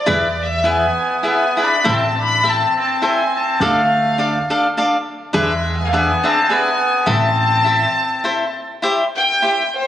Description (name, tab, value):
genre	mexican folk, mariachi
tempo	103 BPM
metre	3/4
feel	swing 54% on 8ths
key	A harmonic minor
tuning	A4 = 445 Hz
part	warm chamber violin section	melody	0.0-9.9 s	C5 to B5	-18 LUFS	left 2 dB	none
part	cavaquinho	accompaniment	0.1-9.6 s	D4 to F5	-19 LUFS	left 1 dB	none
part	upright bass	bass	0.1-7.8 s	A1 to E2	-22 LUFS	equal	none
part	warm trumpet	second line	0.7-8.6 s	G#3 to D4	-21 LUFS	right 2 dB	none
room	wet scoring stage reverb, RT60 2.0 s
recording	recorded on a phone in the room, club reverb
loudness	-14 LUFS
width	side -11 dB against mid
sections	0.0-8.8 A section; 8.8-9.9 B section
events	none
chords	0.1 E; 1.9 Am; 3.6 Dm; 5.3 E7; 7.1 Am; 8.8 C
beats	| 0.09 0.67 1.26 | 1.86 2.45 3.03 | 3.61 4.19 4.77 | 5.34 5.92 6.49 | 7.07 7.66 8.25 | 8.85 9.45